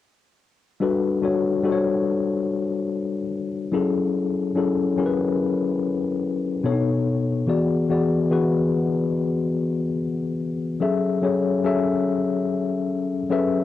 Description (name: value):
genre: R&B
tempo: 72 BPM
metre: 4/4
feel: swing 61% on 16ths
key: F# minor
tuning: A4 = 440 Hz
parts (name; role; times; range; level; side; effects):
- tine electric piano; solo; 0.8-13.6 s; B2 to E5; -20 LUFS; left 3 dB; overdrive, fast stereo tremolo, cassette tape
room: moderate booth ambience, RT60 0.2 s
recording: home recording on cassette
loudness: -20 LUFS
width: side -13 dB against mid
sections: 0.8-13.6 A section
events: none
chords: 0.8 Gmaj9; 3.7 F#m9; 6.6 B9; 7.5 E9; 10.8 F#m9